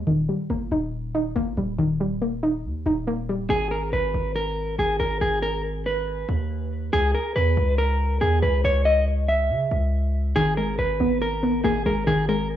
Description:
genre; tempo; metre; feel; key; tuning
hip hop, trap; 140 BPM; 4/4; half-time; G# harmonic minor; A4 = 439 Hz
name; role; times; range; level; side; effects
soft round pluck; accompaniment; 0.0-3.5, 10.4-12.6 s; D#3 to D#4; -23 LUFS; left 1 dB; chorus
distorted 808-style bass; bass; 0.0-12.6 s; D#1 to C#3; -25 LUFS; equal; distortion, transformer saturation
mellow electric guitar; melody; 3.5-12.5 s; G#4 to E5; -24 LUFS; equal; spring reverb, analog delay
room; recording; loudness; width
little or no reverb; dry, gritty hardware recording, cassette tape, studio reverb; -21 LUFS; side -11 dB against mid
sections
0.0-3.5 A section; 3.5-12.6 B section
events
break 0.0-3.5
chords
0.1 D#; 3.5 G#madd9; 6.9 C#m; 10.4 G#madd9

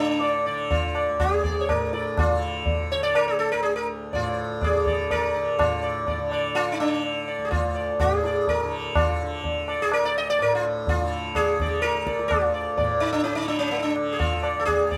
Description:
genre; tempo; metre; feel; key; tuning
indian classical, Hindustani; 124 BPM; 7/4; straight; D raga todi; A4 = 439 Hz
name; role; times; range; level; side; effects
sitar; melody; 0.0-15.0 s; Bb3 to Eb5; -26 LUFS; equal; none
tanpura; drone; 0.0-15.0 s; D2 to D3; -33 LUFS; equal; none
tabla; percussion; 0.2-15.0 s; none; -29 LUFS; equal; none
room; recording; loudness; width
wet studio reverb, RT60 0.8 s; band playing live in one room; -24 LUFS; mono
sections
0.0-5.6 A section; 5.6-15.0 B section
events
speeding up 0.0-15.0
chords
none

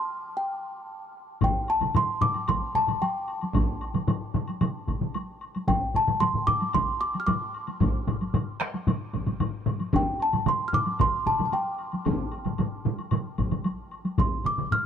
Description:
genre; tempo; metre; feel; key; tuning
japanese traditional, taiko drum ensemble; 113 BPM; 4/4; straight; G suspended pentatonic; A4 = 439 Hz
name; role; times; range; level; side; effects
small celesta; melody; 0.0-14.9 s; G5 to F6; -27 LUFS; equal; none
taiko ensemble; percussion; 1.4-14.8 s; none; -31 LUFS; equal; none
taiko ensemble; percussion; 1.4-14.8 s; none; -31 LUFS; left 3 dB; none
taiko ensemble; percussion; 1.4-14.8 s; none; -30 LUFS; right 2 dB; none
taiko ensemble; percussion; 1.4-14.3 s; none; -30 LUFS; equal; none
woodblock; percussion; 1.4-14.8 s; none; -40 LUFS; left 3 dB; none
room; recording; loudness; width
light reverb; dark, warm production; -24 LUFS; side -8 dB against mid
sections
0.0-1.4 A section; 1.4-14.9 B section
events
break 0.0-1.4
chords
none

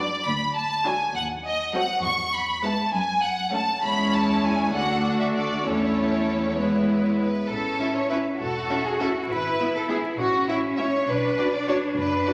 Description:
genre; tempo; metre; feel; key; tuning
quick classical-period movement for string orchestra; 67 BPM (dotted quarters); 6/8; straight; A major; A4 = 440 Hz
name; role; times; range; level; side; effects
rich studio violin section; melody; 0.0-12.3 s; C#5 to C#6; -29 LUFS; equal; none
rich studio violin section; second line; 0.0-12.3 s; C#4 to D5; -30 LUFS; equal; none
rich studio viola section; accompaniment; 0.0-12.3 s; F#3 to F#4; -29 LUFS; equal; none
rich studio cello section; bass; 0.0-12.3 s; D2 to F#4; -33 LUFS; equal; none
rich studio double bass section; bass; 7.5-12.3 s; E1 to B1; -39 LUFS; equal; none
room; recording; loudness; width
wet recital hall reverb, RT60 1.6 s; vinyl crackle; -24 LUFS; mono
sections
0.0-7.5 A section; 7.5-12.3 B section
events
none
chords
0.3 D6; 1.2 D#dim7; 2.0 E; 2.9 F#m; 3.8 C#m/E; 4.7 D; 5.7 A/E; 6.6 E; 7.5 A; 9.3 E/G#; 10.2 A; 11.1 Bm

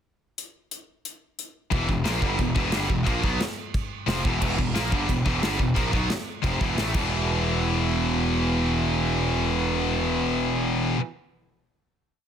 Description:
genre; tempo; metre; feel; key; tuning
heavy metal; 178 BPM; 4/4; straight; E phrygian; A4 = 440 Hz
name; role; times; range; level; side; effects
big rock drum kit; drums; 0.4-7.0 s; china cymbal, crash cymbal, hi-hat, kick drum, snare drum; -28 LUFS; equal; none
heavy high-gain guitar; riff; 1.7-11.0 s; E2 to B3; -30 LUFS; equal; distortion
high-gain distorted guitar; riff; 1.7-11.0 s; E2 to B3; -27 LUFS; left 9 dB; distortion
tight distorted guitar; riff; 1.7-11.0 s; E2 to B3; -30 LUFS; right 10 dB; distortion
fuzz picked electric bass; bass; 1.7-10.9 s; E1 to B1; -28 LUFS; right 1 dB; overdrive
room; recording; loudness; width
small room ambience; dense, heavily limited modern master; -22 LUFS; side -8 dB against mid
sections
0.4-1.7 pickup bar; 1.7-7.1 riff; 7.1-9.8 final hit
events
drum fill 6.9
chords
0.4 N.C.; 1.7 Em; 6.8 A5; 6.9 E5

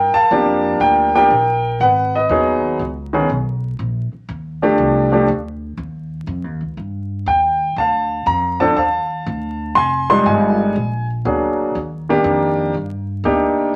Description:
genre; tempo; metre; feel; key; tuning
jazz piano trio; 121 BPM; 4/4; swing 68% on 8ths; unclear; A4 = 445 Hz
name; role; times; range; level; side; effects
warm upright piano; melody; 0.0-13.7 s; D#3 to C6; -17 LUFS; equal; none
upright bass; bass; 0.0-13.7 s; F1 to G2; -27 LUFS; equal; none
room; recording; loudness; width
wet club reverb, RT60 0.7 s; vinyl crackle; -17 LUFS; mono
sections
0.0-13.8 A section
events
none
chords
0.0 Gm7; 1.8 Abm7; 2.8 N.C.; 3.8 Ebmaj9#11; 5.8 Eb; 7.8 Dm; 9.8 Fm9; 10.8 Bbaug7; 11.8 Ebmaj7

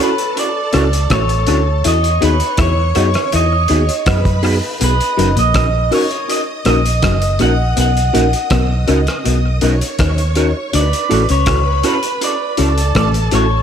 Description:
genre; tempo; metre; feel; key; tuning
lovers rock reggae; 81 BPM; 4/4; straight; B major; A4 = 440 Hz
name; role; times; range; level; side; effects
electric guitar through a small old amp; melody; 0.0-13.6 s; B4 to F#5; -19 LUFS; right 1 dB; lush chorus, tape echo
string machine, violins; second line; 0.0-13.6 s; A4 to D#6; -26 LUFS; right 1 dB; ensemble chorus
mellow tine electric piano; accompaniment; 0.0-13.5 s; B3 to A#4; -21 LUFS; left 2 dB; slow stereo tremolo, tape echo
electric guitar through a small old amp; stabs; 0.0-13.4 s; D4 to D#5; -24 LUFS; right 5 dB; ensemble chorus, tape echo
cloth-damped thuddy drum kit; drums; 0.2-13.5 s; hi-hat, kick drum, rim click; -20 LUFS; equal; tape echo
mellow electric guitar; riff; 0.7-13.5 s; F#3 to F#4; -23 LUFS; left 9 dB; none
vintage muted fingered electric bass; bass; 0.7-13.6 s; F#1 to F#2; -16 LUFS; equal; none
room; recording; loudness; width
small room ambience; none; -12 LUFS; side -8 dB against mid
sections
0.0-13.6 A section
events
none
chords
0.0 Dmaj7; 1.8 Emaj7; 4.8 Bmaj7; 10.7 Dmaj7

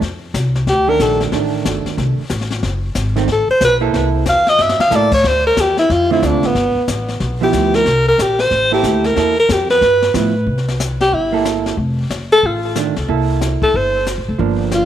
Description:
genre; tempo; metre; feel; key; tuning
jazz, small-group swing and bop; 184 BPM; 4/4; swing 63% on 8ths; C mixolydian; A4 = 436 Hz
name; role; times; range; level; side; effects
upright bass; bass; 0.0-14.9 s; F1 to A2; -20 LUFS; left 1 dB; none
jazz brush drum kit; drums; 0.0-14.9 s; brushed snare drum, crash cymbal, hi-hat, kick drum, snare drum; -24 LUFS; left 4 dB; none
breathy alto saxophone; melody; 0.7-1.2, 3.3-14.9 s; B3 to F5; -14 LUFS; equal; tape echo
hollow-body jazz guitar; accompaniment; 0.9-14.9 s; D3 to A4; -19 LUFS; right 10 dB; none
room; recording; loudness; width
moderate plate reverb, RT60 1.1 s; 1960s-style stereo; -13 LUFS; side -11 dB against mid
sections
0.0-10.5 A section; 10.5-14.9 B section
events
alto saxophone solo 0.0-10.5; drum fill 4.6-4.9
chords
0.0 F13; 2.6 F#m; 3.9 C6; 5.2 Dm7; 6.5 G13; 7.9 C13; 9.8 G13; 10.5 C6; 11.8 F6; 13.1 C6

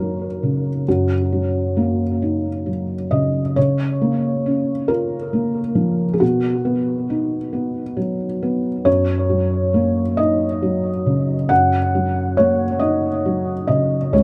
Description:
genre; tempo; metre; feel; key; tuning
neoclassical minimalist piano; 45 BPM (dotted quarters); 6/8; rubato; F# major; A4 = 440 Hz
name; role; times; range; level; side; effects
felt-muted upright piano; solo; 0.0-14.2 s; C#2 to F#5; -19 LUFS; equal; tape echo
room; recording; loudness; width
moderate small room reverb, RT60 0.5 s; dark, warm production; -20 LUFS; mono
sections
0.0-14.2 A section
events
none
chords
0.0 F#6; 3.6 C#6; 6.2 B; 8.9 F#6

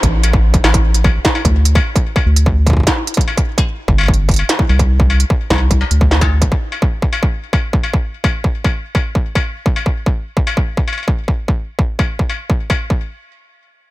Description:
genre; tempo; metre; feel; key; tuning
IDM; 148 BPM; 4/4; straight; A minor; A4 = 440 Hz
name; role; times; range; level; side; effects
round analog bass; bass; 0.0-6.5 s; G1 to D2; -12 LUFS; equal; none
electronic kick drum; drums; 0.0-13.0 s; none; -15 LUFS; equal; distortion
industrial drum kit; drums; 0.0-12.8 s; hi-hat, snare drum, struck metal; -19 LUFS; left 1 dB; none
room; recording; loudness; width
little or no reverb; none; -12 LUFS; side -18 dB against mid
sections
0.0-13.0 A section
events
none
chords
none

